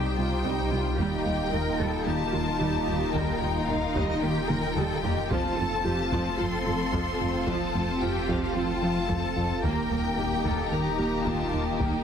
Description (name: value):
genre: cinematic, hybrid orchestral and electronic film score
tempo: 111 BPM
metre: 4/4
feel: straight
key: unclear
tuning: A4 = 439 Hz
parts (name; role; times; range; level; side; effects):
- clear studio violin section; melody; 0.0-12.0 s; Eb5 to C6; -34 LUFS; left 5 dB; none
- rich studio violin section; second line; 0.0-12.0 s; F4 to C5; -36 LUFS; left 3 dB; none
- rich symphonic viola section; accompaniment; 0.0-12.0 s; F3 to Eb4; -33 LUFS; right 1 dB; none
- phased analog pad; sustained chords; 0.0-12.0 s; G3 to G5; -33 LUFS; left 1 dB; phaser, chorus
- thumb-piano-like synth pluck; arpeggios; 0.0-12.0 s; C3 to F4; -36 LUFS; right 4 dB; chorus, ping-pong delay
- smooth synth bass; riff; 0.0-12.0 s; C2 to F3; -33 LUFS; left 2 dB; none
- dark symphonic cello section; bass; 0.0-12.0 s; Eb4 to Bb4; -34 LUFS; right 2 dB; none
- saturated sub bass; bass; 0.0-12.0 s; Eb1 to C2; -37 LUFS; equal; none
- clear chamber double bass section; bass; 0.2-11.9 s; C2 to F2; -35 LUFS; right 3 dB; none
- taiko ensemble; drums; 1.0-12.0 s; none; -35 LUFS; equal; none
room: moderate scoring stage reverb, RT60 1.9 s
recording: heavily compressed radio sound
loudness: -24 LUFS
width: side -8 dB against mid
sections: 0.0-12.0 A section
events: drum fill 4.5-5.3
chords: 0.0 Cm; 1.0 Ebadd9; 5.3 F; 9.6 Eb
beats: 0.45 | 0.99 1.53 2.07 2.61 | 3.15 3.69 4.23 4.77 | 5.31 5.85 6.39 6.93 | 7.47 8.02 8.56 9.10 | 9.64 10.18 10.72 11.26 | 11.80